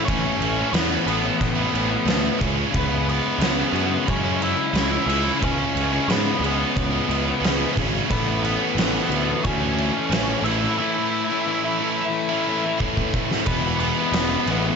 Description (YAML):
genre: quiet-loud alternative rock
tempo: 90 BPM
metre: 4/4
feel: straight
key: unclear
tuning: A4 = 440 Hz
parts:
  - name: octave-fuzz lead guitar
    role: melody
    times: 0.0-14.8 s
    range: B3 to E5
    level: -26 LUFS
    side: left 2 dB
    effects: distortion
  - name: fuzz guitar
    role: riff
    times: 0.0-14.8 s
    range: A2 to E4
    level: -28 LUFS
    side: left 12 dB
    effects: distortion
  - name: heavy high-gain guitar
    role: riff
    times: 0.0-14.8 s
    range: A2 to E4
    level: -28 LUFS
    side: right 17 dB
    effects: distortion
  - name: high-gain distorted guitar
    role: riff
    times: 0.0-14.8 s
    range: E2 to C#4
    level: -29 LUFS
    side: equal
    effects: distortion
  - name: fuzz picked electric bass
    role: bass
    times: 0.1-14.7 s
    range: E1 to G#2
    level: -26 LUFS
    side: right 1 dB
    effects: overdrive
  - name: oversized low-tuned drum kit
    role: drums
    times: 0.1-14.6 s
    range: crash cymbal, kick drum, snare drum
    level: -24 LUFS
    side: right 1 dB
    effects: none
room: little or no reverb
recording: nothing above 7.7 kHz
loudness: -19 LUFS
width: side -6 dB against mid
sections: 0.0-13.5 A section; 13.5-14.8 A section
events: drum fill 12.8-13.5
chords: 0.0 A; 2.4 C#m; 8.1 A; 13.5 E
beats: | 0.07 0.74 1.40 2.07 | 2.74 3.41 4.08 4.75 | 5.42 6.09 6.76 7.43 | 8.10 8.77 9.44 10.12 | 10.79 11.46 12.13 12.80 | 13.47 14.14